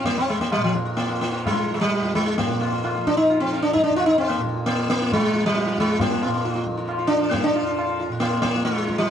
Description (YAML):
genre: indian classical, Hindustani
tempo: 132 BPM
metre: 4/4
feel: straight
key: F raga bageshri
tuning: A4 = 440 Hz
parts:
  - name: sitar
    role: melody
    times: 0.0-9.1 s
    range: F3 to F4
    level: -20 LUFS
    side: equal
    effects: plate reverb
  - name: tanpura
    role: drone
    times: 0.0-9.1 s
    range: F2 to F3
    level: -30 LUFS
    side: right 1 dB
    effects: none
  - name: tabla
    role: percussion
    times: 0.0-9.1 s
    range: none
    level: -29 LUFS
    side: left 2 dB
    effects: none
room: moderate studio reverb, RT60 0.7 s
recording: dark, warm production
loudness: -19 LUFS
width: side -8 dB against mid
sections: 0.0-9.1 A section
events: speeding up 0.0-9.1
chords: none